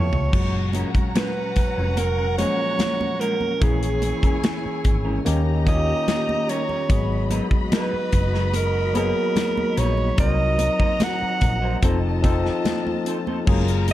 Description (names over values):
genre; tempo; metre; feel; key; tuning
lush 1970s-style soul; 73 BPM; 4/4; straight; F# major; A4 = 439 Hz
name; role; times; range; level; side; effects
clear alto saxophone; melody; 0.0-13.9 s; G#4 to Gb5; -25 LUFS; right 4 dB; none
warm studio string section; second line; 0.0-13.9 s; C#4 to C#6; -31 LUFS; left 3 dB; tape echo
barky tine electric piano; accompaniment; 0.0-13.9 s; A#2 to A5; -27 LUFS; left 4 dB; overdrive
electric guitar through a small old amp; riff; 0.0-13.9 s; F#3 to C5; -33 LUFS; right 2 dB; spring reverb
hollow-body short-scale fingered electric bass; bass; 0.0-13.9 s; E#1 to D#2; -23 LUFS; equal; none
modern studio drum kit; drums; 0.1-13.9 s; crash cymbal, hi-hat, kick drum, snare drum, toms; -22 LUFS; equal; none
congas; percussion; 0.7-13.9 s; none; -32 LUFS; right 4 dB; none
mellow French horn section; sustained chords; 6.9-13.9 s; C#3 to F#4; -37 LUFS; equal; none
room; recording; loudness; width
studio reverb; dark, warm production; -19 LUFS; side -14 dB against mid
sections
0.3-13.5 A section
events
tine electric piano fill 0.0-0.3; drum fill 0.0-0.3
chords
0.3 F#maj9; 3.6 A#m7b5; 5.3 D#7; 6.9 G#m9; 10.2 Cm7b5; 11.8 F7